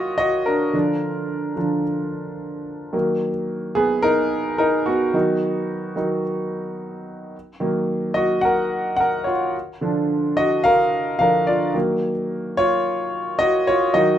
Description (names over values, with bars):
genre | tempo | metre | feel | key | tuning
pop | 109 BPM | 4/4 | straight | Eb minor | A4 = 440 Hz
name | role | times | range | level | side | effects
warm concert grand piano | solo | 0.0-14.2 s | D3 to Gb5 | -19 LUFS | equal | none
room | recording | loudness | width
wet studio reverb, RT60 0.6 s | rough home demo mix | -18 LUFS | side -10 dB against mid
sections
0.0-14.2 A section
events
grand piano solo 0.0-14.2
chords
0.0 Ebmadd9; 0.7 Bb/D; 2.9 Ebm; 5.1 B/D#; 7.3 Ebmadd9; 9.5 Bb/D; 11.7 Ebmadd9